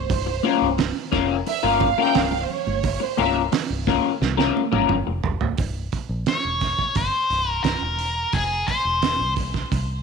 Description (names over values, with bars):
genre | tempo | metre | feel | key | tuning
psychedelic rock | 88 BPM | 4/4 | straight | C phrygian dominant | A4 = 441 Hz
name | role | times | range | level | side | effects
warm studio string section | sustained chords | 0.0-3.4 s | C5 to G5 | -25 LUFS | right 10 dB | none
fingered electric bass | bass | 0.0-10.0 s | C1 to C2 | -27 LUFS | equal | none
cloth-damped thuddy drum kit | drums | 0.1-9.9 s | hi-hat, kick drum, snare drum, toms | -26 LUFS | right 6 dB | none
electric guitar through a small old amp | riff | 0.3-5.1 s | Bb3 to Bb4 | -21 LUFS | left 14 dB | rotary speaker
congas | percussion | 0.4-5.6 s | none | -32 LUFS | right 14 dB | none
octave-fuzz lead guitar | melody | 6.3-9.3 s | Ab4 to Db5 | -22 LUFS | left 2 dB | distortion, tape echo
room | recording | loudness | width
light reverb, small room reverb | 1960s-style stereo with parts hard left and right | -20 LUFS | side -5 dB against mid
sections
0.0-5.6 A section; 5.6-10.0 B section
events
string section solo 0.0-5.6; drum fill 4.2-5.6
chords
0.1 Bbmadd9/C; 5.6 C; 8.3 F5